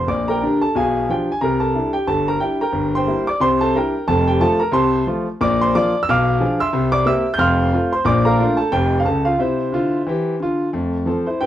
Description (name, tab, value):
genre	jazz, stride piano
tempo	180 BPM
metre	4/4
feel	swing 58% on 8ths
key	F major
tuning	A4 = 439 Hz
part	clear concert grand piano	solo	0.0-11.5 s	F1 to G6	-16 LUFS	equal	none
room	moderate studio reverb, RT60 0.6 s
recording	worn, warbling old tape, cassette tape, warbly pitch drift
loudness	-16 LUFS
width	side -12 dB against mid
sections	0.1-10.7 A section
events	none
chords	0.1 Gm/Bb; 0.8 Bdim7; 1.4 C9; 2.7 C7/G; 3.4 C9; 4.1 F; 5.4 Bb; 6.1 Bdim7; 6.7 C7; 7.4 F; 8.1 Bbmaj7; 9.4 C; 10.7 F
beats	| 0.09 0.42 0.75 1.08 | 1.42 1.75 2.08 2.42 | 2.75 3.08 3.41 3.75 | 4.08 4.41 4.74 5.07 | 5.41 5.74 6.07 6.40 | 6.74 7.07 7.40 7.73 | 8.07 8.40 8.73 9.07 | 9.40 9.73 10.06 10.40 | 10.73 11.07 11.40